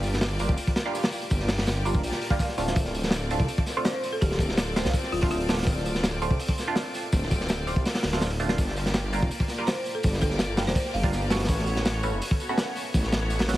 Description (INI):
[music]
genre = drum and bass, jungle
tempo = 165 BPM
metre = 4/4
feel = straight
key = unclear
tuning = A4 = 440 Hz
[part]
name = clear studio string section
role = sustained chords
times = 0.0-13.6 s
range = Bb3 to D5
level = -35 LUFS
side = left 1 dB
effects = none
[part]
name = band-passed chord stab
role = stabs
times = 0.0-13.6 s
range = G3 to F#4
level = -32 LUFS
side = right 2 dB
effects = phaser, wide subtle chorus, dub echo
[part]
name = detuned saw bass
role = bass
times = 0.0-13.6 s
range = D1 to C2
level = -28 LUFS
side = equal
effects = none
[part]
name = crunchy breakbeat drum kit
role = drums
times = 0.0-13.6 s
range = hi-hat, kick drum, snare drum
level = -26 LUFS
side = equal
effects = none
[part]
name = crunchy breakbeat drum kit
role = drums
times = 0.0-13.6 s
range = hi-hat, snare drum, tambourine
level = -41 LUFS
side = equal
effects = high-pass filter on hats, high-pass filter on snare, high-pass filter on perc, high-pass filter on room
[part]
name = folk marimba with hard mallets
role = melody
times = 3.9-5.8, 9.7-11.1 s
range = F4 to F5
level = -35 LUFS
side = equal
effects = dub echo
[sound]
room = light reverb, small room ambience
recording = heavily compressed radio sound, vinyl crackle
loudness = -23 LUFS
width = side -15 dB against mid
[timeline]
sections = 0.0-13.6 A section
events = none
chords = 0.0 Gm7; 2.8 Dm7; 8.6 Gm7; 11.5 A69